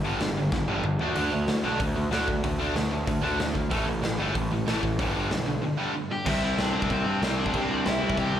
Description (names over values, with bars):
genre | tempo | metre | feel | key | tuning
punk rock | 188 BPM | 4/4 | straight | unclear | A4 = 440 Hz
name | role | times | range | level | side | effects
distorted electric guitar | riff | 0.0-8.4 s | G2 to D4 | -31 LUFS | left 8 dB | overdrive
distorted electric guitar | riff | 0.0-8.4 s | G2 to D4 | -30 LUFS | right 7 dB | overdrive, slapback echo
fuzz picked electric bass | bass | 0.0-8.4 s | G1 to G2 | -30 LUFS | equal | overdrive
raw garage drum kit | drums | 0.2-8.2 s | crash cymbal, hi-hat, kick drum, snare drum, toms | -30 LUFS | equal | none
dark smooth lead guitar | melody | 6.1-8.4 s | C4 to G5 | -30 LUFS | equal | overdrive, slapback echo
crunchy overdriven guitar | riff | 6.3-8.4 s | C3 to C4 | -31 LUFS | equal | slapback echo
room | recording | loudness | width
small room ambience | live gig heard through the venue's PA, club reverb | -24 LUFS | side -10 dB against mid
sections
0.0-6.3 A section; 6.3-8.4 B section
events
drum fill 0.5-1.2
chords
0.0 G5; 1.0 D5; 3.7 A5; 5.0 G; 6.3 C